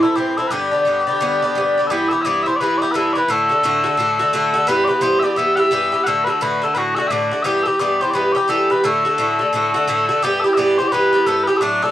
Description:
celtic folk; 173 BPM; 4/4; swing 62% on 8ths; A4 = 440 Hz
mellow small bagpipes; melody; 0.0-11.9 s; D4 to F#5; -18 LUFS; left 2 dB; cassette tape
Irish bouzouki; accompaniment; 0.0-11.9 s; G2 to G4; -18 LUFS; right 1 dB; cassette tape
wet studio ambience, RT60 0.5 s; home recording on cassette; -15 LUFS; side -12 dB against mid
0.0-1.9 A section; 1.9-11.9 B section
0.0 Am; 0.5 G; 1.9 Em; 3.3 D; 4.7 Em; 6.1 D; 7.5 Em; 8.8 D; 10.2 Em

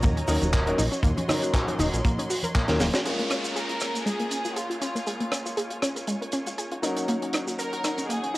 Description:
nu-disco, nu disco; 119 BPM; 4/4; swing 55% on 16ths; Bb minor; A4 = 439 Hz
bright grand piano; accompaniment; 0.0-8.4 s; Gb3 to Bb4; -32 LUFS; left 1 dB; sidechain pumping, low-pass filter, cassette tape, tape echo
rich studio string section; sustained chords; 0.0-8.4 s; Eb3 to C6; -36 LUFS; equal; sidechain pumping, low-pass filter, cassette tape
analog pluck; arpeggios; 0.0-8.4 s; Ab3 to Bb4; -30 LUFS; equal; chorus, sidechain pumping, cassette tape, tape echo
fat analog bass; bass; 0.0-2.9 s; Eb1 to Eb2; -26 LUFS; equal
kick drum; drums; 0.0-2.7 s; -25 LUFS; equal; cassette tape
tight funk drum kit; drums; 0.0-8.4 s; crash cymbal, handclaps, hi-hat, rim click, shaker, snare drum; -30 LUFS; equal; cassette tape
maracas and congas; percussion; 0.0-3.0 s; -35 LUFS; equal
downlifter and riser; sound effects; 3.1-8.4 s; -37 LUFS; equal
warm studio violin section; melody; 3.6-8.4 s; F4 to Bb4; -33 LUFS; equal; cassette tape, tape echo
moderate spring reverb, RT60 2.4 s; home recording on cassette; -24 LUFS; side -18 dB against mid
0.0-3.1 A section; 3.1-8.4 B section
drum fill 2.7-3.1; band accent 2.9; filter sweep on grand piano 3.1-8.4; filter sweep on string section 3.1-8.4
0.0 Ebm7; 3.1 Bbm7; 6.8 Ebm7

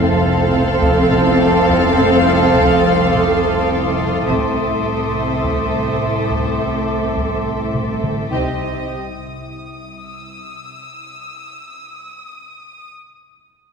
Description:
cinematic, suspense film score; 52 BPM; 4/4; straight; A4 = 438 Hz
rich studio violin section; melody; 0.0-9.0 s; Eb5 to F5; -23 LUFS; left 2 dB
warm studio violin section; second line; 0.0-9.0 s; G4 to A4; -20 LUFS; right 1 dB
dark studio viola section; accompaniment; 0.0-9.0 s; C4; -21 LUFS; right 1 dB
dark French horn section; sustained chords; 0.0-8.9 s; G3 to Eb4; -26 LUFS; left 2 dB
dark studio cello section; bass; 0.0-9.0 s; F2 to C3; -23 LUFS; right 3 dB
warm chamber double bass section; bass; 0.0-9.0 s; F1 to C2; -26 LUFS; right 1 dB
organ-like drone; drone; 0.0-9.0 s; C2; -25 LUFS; left 1 dB; ensemble chorus, built-in reverb
clear studio violin section; texture; 0.0-12.9 s; C6 to E6; -28 LUFS; left 3 dB
taiko ensemble; drums; 0.5-10.6 s; -26 LUFS; left 1 dB
wet concert hall reverb, RT60 2.5 s; minimal, uncompressed stereo recording; -14 LUFS; side -6 dB against mid
0.0-8.9 A section; 8.9-13.5 B section
drum fill 7.7-8.9
0.0 F; 4.3 Am; 8.3 Cm; 8.9 N.C.

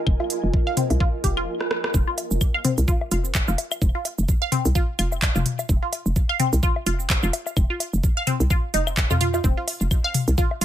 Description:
minimal techno; 128 BPM; 4/4; swing 57% on 16ths; F minor; A4 = 440 Hz
granular cloud pad; texture; 0.0-1.5 s; F4 to Ab5; -30 LUFS; right 2 dB; built-in reverb, sidechain pumping
hollow knocking FM bass; bass; 0.1-10.6 s; F1 to F2; -23 LUFS; equal; sidechain pumping
electronic kick drum; drums; 0.1-10.5 s; -21 LUFS; equal
electronic claves, woodblock and toms; percussion; 0.1-10.6 s; -27 LUFS; left 5 dB; tape echo
resonant blip pluck; riff; 0.2-10.6 s; C4 to F5; -27 LUFS; equal; phaser, sidechain pumping, ping-pong delay
minimal click drum kit; drums; 0.3-10.6 s; cabasa, handclaps, hi-hat, rim click; -27 LUFS; right 2 dB
little or no reverb; -20 LUFS; side -11 dB against mid
0.0-1.9 A section; 1.9-10.6 B section
stop 1.5-1.9; drum fill 1.6-1.9; drop 1.9-10.6
0.0 Fm7; 1.9 N.C.

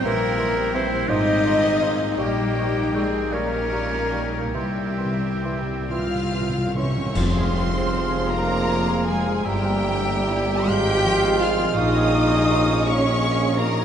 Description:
classical, slow romantic movement for symphony orchestra; 42-58 BPM (dotted quarters); 6/8; rubato; F minor; A4 = 440 Hz
rich studio violin section; melody; 0.0-13.8 s; E5 to G6; -30 LUFS; left 2 dB
clear oboe; second line; 0.0-13.7 s; Bb3 to F5; -30 LUFS; right 2 dB
clear studio violin section; second line; 0.0-13.8 s; G4 to G5; -30 LUFS; left 1 dB
mellow clarinet; second line; 0.0-13.7 s; F4 to Eb5; -30 LUFS; left 3 dB
mellow bassoon; accompaniment; 0.0-13.7 s; E3 to Ab3; -31 LUFS; right 4 dB
warm studio viola section; accompaniment; 0.0-13.8 s; F3 to Ab4; -32 LUFS; left 1 dB
warm French horn section; sustained chords; 0.0-13.8 s; G3 to G4; -26 LUFS; right 1 dB
concert harp; arpeggios; 0.0-13.8 s; F2 to F5; -29 LUFS; left 1 dB
clear studio double bass section; bass; 0.0-13.8 s; F1 to C2; -29 LUFS; equal
rich studio cello section; bass; 0.0-13.8 s; G3 to G4; -30 LUFS; equal
mellow wooden flute; second line; 0.1-13.7 s; Bb5 to Db6; -34 LUFS; right 1 dB
cymbal swell, clash cymbals and concert bass drum; percussion; 4.5-8.6 s; -32 LUFS; equal
timpani; percussion; 4.5-8.3 s; F2 to C3; -29 LUFS; left 1 dB
clear tuba; bass; 7.2-13.8 s; F1 to Bb1; -30 LUFS; right 1 dB
wet cathedral reverb, RT60 7.1 s; in a vast, echoing space, nothing above 10.9 kHz; -19 LUFS; side -9 dB against mid
0.0-7.2 A section; 7.2-13.8 B section
timpani fill 4.5-7.2; band accent 7.2-7.9
0.1 C7/Bb; 1.1 Fm/Ab; 2.2 Gdim/Bb; 4.5 C; 7.2 Fm; 9.5 Edim/G; 10.7 Fm/Ab; 11.8 Bbm7

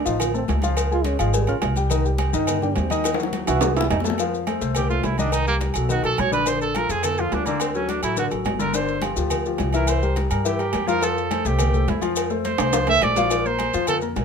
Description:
Afro-Cuban jazz; 211 BPM; 4/4; straight; F major from 4.2 s; A4 = 441 Hz
dark trombone; second line; 0.0-4.0 s; Db3 to Gb4; -26 LUFS; right 7 dB
warm concert grand piano; accompaniment; 0.1-14.2 s; D3 to F6; -25 LUFS; left 5 dB
upright bass; bass; 0.1-14.2 s; G1 to G2; -25 LUFS; equal
congas; percussion; 0.1-14.2 s; -32 LUFS; left 3 dB
cowbell and bongos; percussion; 0.1-14.2 s; -30 LUFS; left 4 dB
maracas; percussion; 0.1-14.2 s; -33 LUFS; left 6 dB
agogo bells and timbales; percussion; 0.2-14.2 s; -29 LUFS; right 8 dB
clear trumpet; melody; 4.8-14.0 s; Bb3 to E5; -24 LUFS; right 4 dB
light reverb; minimal, uncompressed stereo recording; -19 LUFS; side -6 dB against mid
0.0-4.2 A section; 4.2-13.3 A section
trombone solo 0.0-4.2; drum fill 3.0-4.2, 12.6-13.3; trumpet solo 4.2-14.2
0.0 Dm (rootless); 0.8 Db; 1.9 Cm; 3.0 Ebm; 3.6 Caug; 4.2 F; 5.3 Cm7; 5.9 B7; 6.5 Bbmaj7; 7.6 D; 8.7 G7sus4; 9.9 C7; 11.0 F; 13.3 Bbsus2

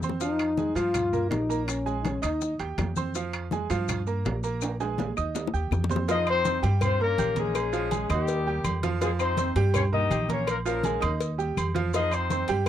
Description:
latin, salsa; 164 BPM; 4/4; straight; F minor; A4 = 440 Hz
bright grand piano; accompaniment; 0.0-12.7 s; F3 to G6; -31 LUFS; right 7 dB
upright bass; bass; 0.0-12.7 s; Bb1 to G2; -29 LUFS; equal
congas; percussion; 0.0-12.7 s; -34 LUFS; left 1 dB
maracas; percussion; 0.0-12.7 s; -43 LUFS; left 28 dB
bongos and cowbell; percussion; 0.1-12.7 s; -35 LUFS; left 7 dB
dark trombone; melody; 0.2-2.6 s; Db4 to F4; -27 LUFS; left 2 dB
claves; percussion; 0.4-12.3 s; -38 LUFS; left 27 dB
timbales and agogo bells; percussion; 0.4-12.7 s; -36 LUFS; right 5 dB
mellow horn section; melody; 6.1-12.5 s; G3 to Eb5; -27 LUFS; left 5 dB
little or no reverb; dry, close 1970s-style studio recording; -24 LUFS; side -11 dB against mid
0.0-6.1 A section; 6.1-12.7 B section
drum fill 0.0, 4.6-6.1
0.2 Fm7; 0.9 Ebadd9; 1.7 Bbm7; 2.4 Eb; 3.2 Fm; 3.9 Gm7; 4.6 Bb7sus4; 5.4 Eb; 6.1 Fm7; 6.8 Gm7b5; 7.5 Bbm7; 8.3 Eb; 9.0 F5; 9.7 Bbm6; 10.5 Bbm7; 11.2 Eb; 11.9 Fm7

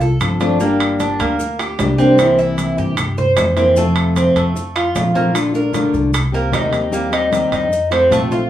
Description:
latin, Cuban son and guajira; 152 BPM; 4/4; straight; A4 = 440 Hz
Cuban tres; arpeggios; 0.0-8.5 s; A3 to C5; -17 LUFS; right 1 dB
upright bass; bass; 0.0-8.5 s; G1 to G2; -22 LUFS; equal
congas; percussion; 0.0-8.5 s; -27 LUFS; equal
maracas; percussion; 0.0-8.5 s; -36 LUFS; left 5 dB
nylon-string guitar; accompaniment; 0.2-8.5 s; C3 to G4; -18 LUFS; left 2 dB
claves; percussion; 0.2-8.1 s; -31 LUFS; left 2 dB
timbales; percussion; 0.2-8.3 s; -23 LUFS; right 4 dB
wet studio ambience, RT60 0.5 s; band playing live in one room, small room ambience; -13 LUFS; side -12 dB against mid
0.0-5.4 A section; 5.4-8.5 B section
0.0 F; 0.6 Gm; 2.2 C7; 3.8 F; 5.4 Bbmaj7; 6.1 Cm7; 6.9 Eb6; 7.7 F7

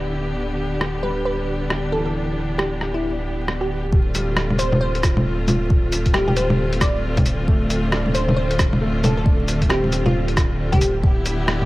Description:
future garage; 135 BPM; 4/4; swing 61% on 16ths; D dorian; A4 = 440 Hz
glassy wavetable pluck; melody; 0.0-11.1 s; E4 to D5; -26 LUFS; equal; chorus, cassette tape, tape echo
clear upright piano; accompaniment; 0.0-11.1 s; E3 to D4; -29 LUFS; equal; sidechain pumping, tape echo
clear studio string section; sustained chords; 0.0-11.7 s; D3 to G4; -26 LUFS; left 1 dB; sidechain pumping
soft dub sub bass; bass; 0.0-11.7 s; D1; -25 LUFS; equal; sidechain pumping
backwards swelling texture; texture; 0.0-3.9, 11.0-11.7 s; D4 to D5; -41 LUFS; left 1 dB
lo-fi sampler-style drum kit; drums; 0.8-11.7 s; bongos, cabasa, hi-hat, rim click; -22 LUFS; equal; low-pass filter on snare, low-pass filter on hats, low-pass filter on perc
electronic kick drum; drums; 3.9-11.1 s; -18 LUFS; equal
light reverb; vinyl crackle; -18 LUFS; side -18 dB against mid
0.0-3.9 A section; 3.9-11.7 B section
0.0 Em/D; 3.9 Dm7; 11.0 Em/D

